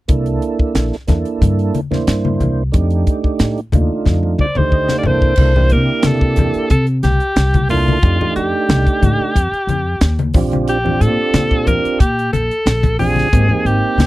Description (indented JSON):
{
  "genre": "electric jazz fusion",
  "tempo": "91 BPM",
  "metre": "4/4",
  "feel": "straight",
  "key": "unclear",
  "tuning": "A4 = 440 Hz",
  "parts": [
    { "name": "mellow tonewheel organ", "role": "accompaniment", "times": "0.1-14.1 s", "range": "A3 to G5", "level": "-20 LUFS", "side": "right 5 dB", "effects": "slow rotary speaker, chorus vibrato" },
    { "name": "upright bass", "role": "bass", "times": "0.1-14.1 s", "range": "Ab1 to C3", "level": "-16 LUFS", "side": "equal", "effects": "none" },
    { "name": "crisp fusion drum kit", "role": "drums", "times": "0.1-14.1 s", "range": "crash cymbal, hi-hat, kick drum, snare drum, toms", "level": "-16 LUFS", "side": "equal", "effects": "none" },
    { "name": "congas", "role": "percussion", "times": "1.1-14.1 s", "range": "none", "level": "-21 LUFS", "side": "left 4 dB", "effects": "none" },
    { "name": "edgy alto saxophone", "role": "melody", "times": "4.4-14.1 s", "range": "F4 to D5", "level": "-18 LUFS", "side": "equal", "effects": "none" }
  ],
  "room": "little or no reverb",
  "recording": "dry, close 1970s-style studio recording",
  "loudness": "-13 LUFS",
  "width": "side -17 dB against mid",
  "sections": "0.1-5.4 A section; 5.4-14.1 B section",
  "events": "drum fill 4.1-5.4; tonewheel organ fill 4.1-5.4",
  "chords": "0.1 C13; 2.7 F13; 5.1 C13; 8.0 F13; 10.4 Bb69; 13.3 Abmaj7",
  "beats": "| 0.09 0.75 1.42 2.08 | 2.74 3.40 4.06 4.73 | 5.39 6.05 6.71 7.37 | 8.04 8.70 9.36 10.02 | 10.68 11.34 12.01 12.67 | 13.33 13.99"
}